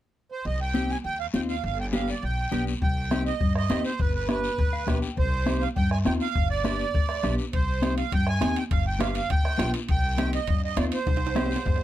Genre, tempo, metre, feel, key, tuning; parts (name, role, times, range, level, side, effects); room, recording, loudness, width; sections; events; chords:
latin, cumbia; 204 BPM; 4/4; straight; C harmonic minor; A4 = 435 Hz
accordion; melody; 0.3-11.8 s; B4 to Ab5; -30 LUFS; right 5 dB; light tremolo tuning
upright bass; bass; 0.5-11.8 s; G1 to G2; -29 LUFS; equal
congas; percussion; 0.5-11.8 s; -33 LUFS; right 3 dB
guiro; percussion; 0.5-11.8 s; -42 LUFS; left 7 dB
mellow electric guitar; accompaniment; 0.7-11.6 s; B3 to G5; -28 LUFS; left 5 dB
bombo; percussion; 2.8-11.8 s; -27 LUFS; left 1 dB
timbales; percussion; 7.5-11.8 s; -37 LUFS; right 8 dB
little or no reverb; close, detailed microphones; -23 LUFS; side -13 dB against mid
0.5-2.8 A section; 2.8-11.8 B section
clean electric guitar fill 4.6-5.2; drum fill 11.1-11.8
0.5 Cm; 1.6 G; 2.8 Cm; 4.0 G; 5.2 Cm; 6.4 G; 7.5 Cm; 8.7 G7; 9.9 Cm